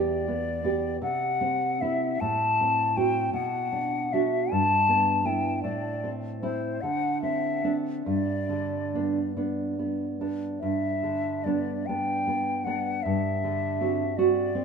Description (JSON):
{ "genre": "romantic duo for flute and classical guitar", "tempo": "46-56 BPM (dotted quarters)", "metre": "6/8", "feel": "rubato", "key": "G major", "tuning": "A4 = 440 Hz", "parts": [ { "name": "hollow concert flute", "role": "melody", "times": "0.0-14.6 s", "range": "C5 to A5", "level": "-27 LUFS", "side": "left 3 dB", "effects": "none" }, { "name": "nylon-string guitar", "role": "accompaniment", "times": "0.0-14.6 s", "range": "E2 to G4", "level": "-27 LUFS", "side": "right 2 dB", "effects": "none" } ], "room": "moderate plate reverb, RT60 3.4 s", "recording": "minimal, uncompressed stereo recording", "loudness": "-24 LUFS", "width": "side -6 dB against mid", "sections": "0.0-10.6 A section; 10.6-14.6 A section", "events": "none", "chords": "0.0 Em; 1.0 C; 2.2 F#dim/A; 3.3 Bm; 4.5 Em/G; 5.6 Am; 6.8 D9; 8.0 G; 13.0 D7/G" }